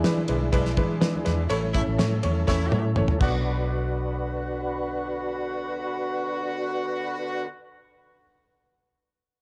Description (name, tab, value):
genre	uptempo 1960s-style soul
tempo	123 BPM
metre	4/4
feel	straight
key	B dorian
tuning	A4 = 442 Hz
part	clear upright piano	accompaniment	0.0-7.5 s	G#3 to E5	-32 LUFS	equal	tube saturation
part	tonewheel organ	sustained chords	0.0-7.5 s	C#4 to B4	-33 LUFS	equal	overdrive, chorus vibrato, slow rotary speaker
part	vintage muted fingered electric bass	bass	0.0-7.5 s	A1 to E3	-29 LUFS	equal	none
part	cloth-damped thuddy drum kit	drums	0.0-3.3 s	crash cymbal, kick drum, ride cymbal, snare drum, toms	-29 LUFS	equal	none
part	congas	percussion	0.2-3.7 s	none	-40 LUFS	equal	none
part	warm horn section	second line	1.5-7.5 s	D3 to F#4	-35 LUFS	equal	none
room	light reverb, small room ambience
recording	none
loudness	-26 LUFS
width	mono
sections	0.0-3.5 A section; 3.5-7.3 B section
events	band accent 1.5-3.5; drum fill 2.5-3.5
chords	0.0 E7; 1.5 A; 3.2 Bm